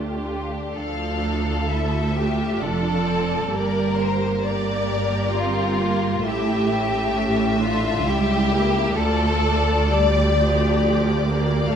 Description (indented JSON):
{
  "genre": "classical, slow romantic movement for string orchestra",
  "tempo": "66 BPM",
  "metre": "3/4",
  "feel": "rubato",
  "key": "D minor",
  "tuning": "A4 = 440 Hz",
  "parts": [
    { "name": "warm studio violin section", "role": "second line", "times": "0.0-11.8 s", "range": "D4 to D5", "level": "-24 LUFS", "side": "left 2 dB", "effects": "none" },
    { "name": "rich studio viola section", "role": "accompaniment", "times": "0.0-11.8 s", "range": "F3 to G4", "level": "-27 LUFS", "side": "right 2 dB", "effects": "none" },
    { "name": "rich studio double bass section", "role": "bass", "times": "0.0-11.8 s", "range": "F1 to D2", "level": "-26 LUFS", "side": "right 2 dB", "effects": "none" },
    { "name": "warm studio cello section", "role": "bass", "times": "0.0-11.8 s", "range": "C#2 to F4", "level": "-24 LUFS", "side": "right 2 dB", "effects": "none" },
    { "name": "rich studio violin section", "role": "melody", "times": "0.7-11.8 s", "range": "Bb4 to F5", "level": "-28 LUFS", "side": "left 7 dB", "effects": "none" }
  ],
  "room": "moderate scoring stage reverb, RT60 1.6 s",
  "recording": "none",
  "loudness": "-19 LUFS",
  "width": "side -8 dB against mid",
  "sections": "0.7-11.8 A section",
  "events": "none",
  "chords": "0.0 Dm; 3.5 Gm; 6.2 A7; 9.0 Dm"
}